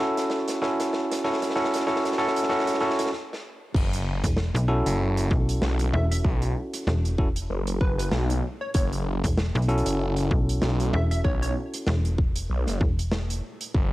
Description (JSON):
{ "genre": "glitch hop", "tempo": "96 BPM", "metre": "4/4", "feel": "swing 57% on 16ths", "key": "F# minor", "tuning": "A4 = 441 Hz", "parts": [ { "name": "bell-like tine electric piano", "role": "stabs", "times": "0.0-12.2 s", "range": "C#4 to A4", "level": "-26 LUFS", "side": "equal", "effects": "vintage 12-bit sampler grit, sidechain pumping, cassette tape, analog delay" }, { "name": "big rock drum kit", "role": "drums", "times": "0.2-13.7 s", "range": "crash cymbal, hi-hat, rim click, snare drum", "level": "-32 LUFS", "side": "right 1 dB", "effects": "high-pass filter on hats, cassette tape, high-pass filter on cymbals, high-pass filter on snare, high-pass filter on room" }, { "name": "phased detuned saw bass", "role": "bass", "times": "3.7-13.9 s", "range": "F#1 to B1", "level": "-26 LUFS", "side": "equal", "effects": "phaser, tube saturation" }, { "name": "electronic kick drum", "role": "drums", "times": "3.7-13.9 s", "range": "none", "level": "-24 LUFS", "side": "equal", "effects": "cassette tape" }, { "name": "slap-like FM bass", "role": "bass", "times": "4.2-13.4 s", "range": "E1 to B1", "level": "-24 LUFS", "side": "equal", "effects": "tube saturation" }, { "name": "plucky unison lead", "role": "melody", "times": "5.9-11.5 s", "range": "B4 to E5", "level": "-33 LUFS", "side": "equal", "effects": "cassette tape, analog delay" } ], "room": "light reverb", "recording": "home recording on cassette", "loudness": "-22 LUFS", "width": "side -17 dB against mid", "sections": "0.0-3.7 A section; 3.7-13.9 B section", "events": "build-up 0.0-3.7; drum fill 0.0-3.1, 3.1-3.7; stop 3.1-3.7; drop 3.7-13.9", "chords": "0.0 F#m7" }